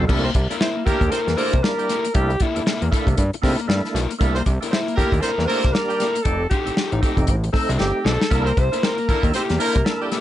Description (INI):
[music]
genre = funk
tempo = 117 BPM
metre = 4/4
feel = swing 60% on 16ths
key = C mixolydian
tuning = A4 = 438 Hz
[part]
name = crunchy overdriven guitar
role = accompaniment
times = 0.0-10.2 s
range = Bb3 to C5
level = -28 LUFS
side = left 7 dB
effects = none
[part]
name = percussive tonewheel organ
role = stabs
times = 0.0-10.2 s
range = G3 to C5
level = -27 LUFS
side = right 2 dB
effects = overdrive, chorus vibrato, slow rotary speaker, plate reverb
[part]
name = fat analog bass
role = bass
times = 0.0-9.8 s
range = F1 to C3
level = -22 LUFS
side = equal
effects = none
[part]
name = warm soul drum kit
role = drums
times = 0.1-10.2 s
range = crash cymbal, hi-hat, kick drum, snare drum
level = -22 LUFS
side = equal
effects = none
[part]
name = warm horn section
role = second line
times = 0.2-10.2 s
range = G3 to E5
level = -28 LUFS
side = right 2 dB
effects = plate reverb
[part]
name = breathy alto saxophone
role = melody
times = 0.6-10.1 s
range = E4 to C5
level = -24 LUFS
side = equal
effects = none
[sound]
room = light reverb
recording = nothing above 10.3 kHz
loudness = -18 LUFS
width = side -13 dB against mid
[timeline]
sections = 0.1-10.2 A section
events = alto saxophone solo 0.1-10.2; drum fill 7.8-8.3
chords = 0.1 C13; 6.3 F9; 8.3 C13